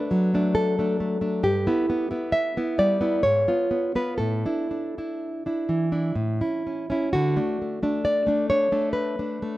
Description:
romantic piece for solo classical guitar; 59-68 BPM; 3/4; rubato; D major; A4 = 440 Hz
nylon-string guitar; solo; 0.0-9.6 s; G2 to E5; -22 LUFS; equal
light reverb; dark, warm production; -22 LUFS; side -16 dB against mid
0.0-9.6 A section
0.0 D/F#; 1.4 Em/G; 3.2 C#7/G#; 4.2 Asus4; 6.2 A; 7.1 D
0.55 | 1.44 2.33 3.23 | 4.19 5.20 6.17 | 7.14 8.08 9.00

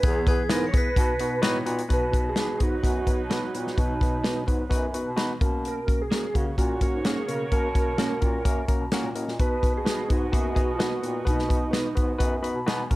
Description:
uptempo 1960s-style soul; 128 BPM; 4/4; straight; B major; A4 = 441 Hz
tonewheel organ; melody; 0.0-11.9 s; D#4 to C#5; -30 LUFS; right 2 dB; chorus vibrato, slow rotary speaker
glockenspiel with hard plastic mallets; second line; 0.0-1.4 s; G#6 to C#7; -37 LUFS; left 2 dB; slapback echo
barky tine electric piano; accompaniment; 0.0-13.0 s; B2 to B5; -30 LUFS; left 2 dB; overdrive
clear bass clarinet; bass; 0.0-13.0 s; E2 to C#3; -32 LUFS; equal
natural country drum kit; drums; 0.0-13.0 s; hi-hat, kick drum, snare drum; -25 LUFS; equal
electric guitar through a small old amp; stabs; 0.5-12.8 s; A#3 to B4; -34 LUFS; right 6 dB; slapback echo
mellow horn section; second line; 1.9-12.6 s; B2 to D#5; -38 LUFS; right 4 dB
vintage hollow-body jazz guitar; riff; 10.3-11.5 s; A#3 to G#4; -38 LUFS; left 5 dB
light reverb, studio reverb; dark, warm production; -22 LUFS; side -18 dB against mid
0.0-1.9 A section; 1.9-13.0 B section
tine electric piano fill 8.5-9.4, 12.2-13.0
0.0 E; 1.0 B; 5.4 F#; 9.4 B
| 0.03 0.50 0.96 1.43 | 1.90 2.37 2.83 3.30 | 3.77 4.24 4.71 5.18 | 5.64 6.11 6.58 7.05 | 7.52 7.99 8.46 8.93 | 9.40 9.87 10.33 10.80 | 11.27 11.74 12.21 12.68

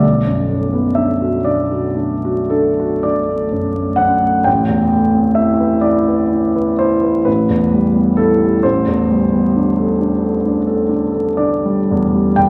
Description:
classical, impressionist solo piano; 36-46 BPM (dotted quarters); 9/8; rubato; A4 = 440 Hz
clear concert grand piano; solo; 0.0-12.5 s; A1 to G5; -15 LUFS; equal
wet scoring stage reverb, RT60 1.5 s; vinyl crackle; -15 LUFS; mono
0.0-12.5 A section
0.0 Bm7; 4.5 Am9; 7.3 G6/A; 8.6 Am11
| 0.02 1.46 3.04 | 4.46 5.85 7.26 | 8.63 9.97 11.36

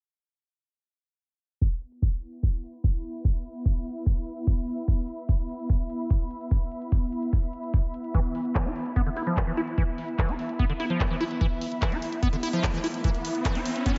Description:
psychedelic trance; 147 BPM; 4/4; straight; A4 = 439 Hz
drum and bass drum kit; drums; 1.6-13.9 s; handclaps, hi-hat; -38 LUFS; equal
electronic kick drum; drums; 1.6-13.9 s; -27 LUFS; equal
ethereal airy pad; texture; 2.3-14.0 s; B3 to B5; -35 LUFS; equal; ensemble chorus, built-in reverb, sidechain pumping
liquid acid bass; riff; 8.1-13.9 s; D3 to F4; -33 LUFS; equal; chorus, sidechain pumping, delay
riser; sound effects; 12.0-14.0 s; -39 LUFS; equal
moderate lush hall reverb, RT60 1.7 s; dreamy mix soaked in reverb, low-pass filter, nothing above 7.7 kHz; -28 LUFS; mono
1.6-14.0 A section
filter sweep 1.6-14.0; riser 12.0-14.0
1.6 E5
| 1.61 2.02 2.43 2.84 | 3.25 3.65 4.06 4.47 | 4.88 5.29 5.70 6.10 | 6.51 6.92 7.33 7.74 | 8.14 8.55 8.96 9.37 | 9.78 10.19 10.59 11.00 | 11.41 11.82 12.23 12.63 | 13.04 13.45 13.86

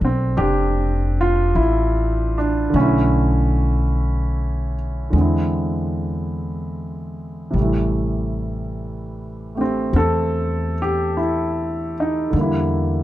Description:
jazz ballad; 50 BPM; 4/4; swing 69% on 8ths; A4 = 440 Hz
warm concert grand piano; accompaniment; 0.0-13.0 s; C3 to A4; -21 LUFS; right 1 dB
upright bass; bass; 0.0-13.0 s; F1 to E2; -21 LUFS; equal
little or no reverb; dark, warm production; -18 LUFS; side -14 dB against mid
0.0-13.0 A section
0.0 Bbmaj9; 2.7 Bm11; 5.1 E7b13; 7.5 Am7; 12.3 Em7b5
0.37 1.56 | 2.75 3.94 5.14 6.34 | 7.54 8.74 9.94 11.14 | 12.34

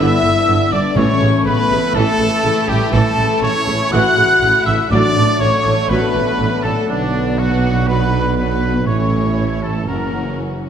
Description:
cinematic, heroic adventure film score; 121 BPM; 4/4; straight; A4 = 440 Hz
warm symphonic violin section; melody; 0.0-10.4 s; D4 to F#5; -27 LUFS; left 4 dB
dark chamber violin section; second line; 0.0-10.7 s; A3 to F#4; -27 LUFS; left 6 dB
hollow concert flute; second line; 0.0-10.4 s; D5 to F#6; -21 LUFS; left 1 dB
warm oboe; second line; 0.0-10.4 s; D4 to F#5; -26 LUFS; right 3 dB
warm symphonic viola section; accompaniment; 0.0-10.7 s; C#3 to C#4; -25 LUFS; right 1 dB
clear trombone section; sustained chords; 0.0-10.6 s; D3 to C#4; -27 LUFS; right 2 dB
dark French horn section; sustained chords; 0.0-10.4 s; D3 to C#5; -22 LUFS; left 5 dB
brilliant trumpet; stabs; 0.0-10.4 s; D4 to F#5; -22 LUFS; right 1 dB
mellow tuba; bass; 0.0-10.7 s; F#1 to B1; -22 LUFS; right 3 dB
warm symphonic cello section; bass; 0.0-10.7 s; F#2 to B2; -23 LUFS; right 2 dB
warm symphonic double bass section; bass; 0.0-10.7 s; F#1 to B1; -23 LUFS; right 3 dB
timpani; percussion; 1.0-1.7, 4.9-5.6 s; A2; -23 LUFS; left 2 dB
wet scoring stage reverb, RT60 1.7 s; -13 LUFS; side -8 dB against mid
0.0-10.7 A section
0.0 G; 1.0 A; 4.9 D/A; 6.9 Bm; 8.9 A; 9.9 F#7
0.47 | 0.96 1.46 1.95 2.44 | 2.93 3.42 3.92 4.42 | 4.91 5.40 5.89 6.39 | 6.89 7.38 7.88 8.37 | 8.87 9.37 9.88 10.38

